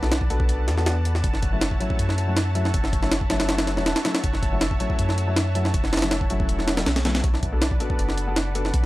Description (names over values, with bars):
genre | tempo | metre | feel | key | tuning
drum and bass, jungle | 160 BPM | 4/4 | straight | unclear | A4 = 440 Hz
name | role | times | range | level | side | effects
lush unison pad | sustained chords | 0.0-8.9 s | B4 to A5 | -34 LUFS | right 1 dB | chorus
warm grand piano | stabs | 0.0-8.7 s | F#3 to A4 | -30 LUFS | left 2 dB | low-pass filter, dub echo
soft dub sub bass | bass | 0.0-8.9 s | E1 to F#2 | -24 LUFS | equal | none
jungle sampler-style drum kit | drums | 0.0-8.9 s | hi-hat, kick drum, snare drum | -23 LUFS | equal | none
wind-like tuned noise texture | texture | 0.0-8.9 s | F#5 to A5 | -36 LUFS | right 2 dB | built-in reverb
room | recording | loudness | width
little or no reverb | dry, gritty hardware recording | -20 LUFS | side -17 dB against mid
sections
0.0-8.9 A section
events
kick drops out 6.5-7.2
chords
0.0 Bm7; 1.2 F#m7; 7.2 Bm7